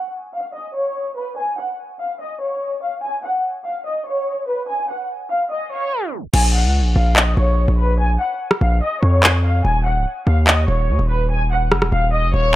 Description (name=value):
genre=hip hop, drill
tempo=145 BPM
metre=4/4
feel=half-time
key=Bb phrygian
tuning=A4 = 440 Hz
part: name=clear studio violin section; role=melody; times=0.0-12.6 s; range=Cb5 to Ab5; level=-22 LUFS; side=left 1 dB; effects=low-pass filter, analog delay
part: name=distorted 808-style bass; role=bass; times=6.3-12.6 s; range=Db1 to F2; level=-16 LUFS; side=equal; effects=distortion
part: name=drill drum kit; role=drums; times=6.3-11.9 s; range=crash cymbal, handclaps, rim click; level=-16 LUFS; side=equal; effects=none
room=digital ambience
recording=dry, gritty hardware recording, transformer saturation, low-pass filter, tape stop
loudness=-17 LUFS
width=side -15 dB against mid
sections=0.0-6.3 A section; 6.3-12.6 B section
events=filter sweep 0.0-6.3; tape stop 5.9-6.3; hi-hats muted 6.3-12.6; filter sweep on violin section 6.3-12.6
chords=0.0 N.C.; 6.3 Bbm; 9.6 Eb7(no3)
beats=0.13 0.54 0.96 | 1.37 1.78 2.20 2.61 | 3.03 3.44 3.85 4.27 | 4.68 5.09 5.51 5.92 | 6.34 6.75 7.16 7.58 | 7.99 8.40 8.82 9.23 | 9.65 10.06 10.47 10.89 | 11.30 11.71 12.13 12.54